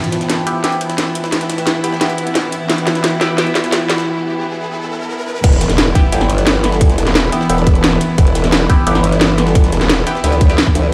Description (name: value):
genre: dark technical drum and bass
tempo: 175 BPM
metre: 4/4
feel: straight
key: E minor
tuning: A4 = 441 Hz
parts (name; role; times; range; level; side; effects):
- bright studio string section; sustained chords; 0.0-10.9 s; E3 to E4; -22 LUFS; equal; sidechain pumping
- drum and bass drum kit; drums; 0.0-10.8 s; crash cymbal, hi-hat, snare drum; -19 LUFS; equal; none
- riser and impact; sound effects; 0.0-6.8 s; none; -28 LUFS; equal; none
- ethereal airy pad; texture; 0.0-4.1 s; E4 to A5; -28 LUFS; equal; ensemble chorus, built-in reverb, phaser, sidechain pumping
- jungle sampler-style drum kit; drums; 0.1-10.8 s; hi-hat, snare drum; -30 LUFS; equal; none
- band-passed chord stab; stabs; 0.5-3.5, 6.0-10.6 s; B3 to G4; -25 LUFS; equal; phaser, tape echo
- growl bass; bass; 5.4-10.9 s; E1 to D2; -18 LUFS; equal; chorus, tube saturation
- electronic kick drum; drums; 5.4-10.7 s; none; -13 LUFS; equal; none
room: light reverb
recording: played on a big sound system in a bare room, stone room reverb, high-pass filter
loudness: -14 LUFS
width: mono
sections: 0.0-5.4 A section; 5.4-10.9 B section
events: build-up 0.0-5.4; drum fill 0.0-4.1; riser 0.0-5.4; break 4.1-5.4; drop 5.4-10.9; impact 5.4-6.8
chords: 0.0 Em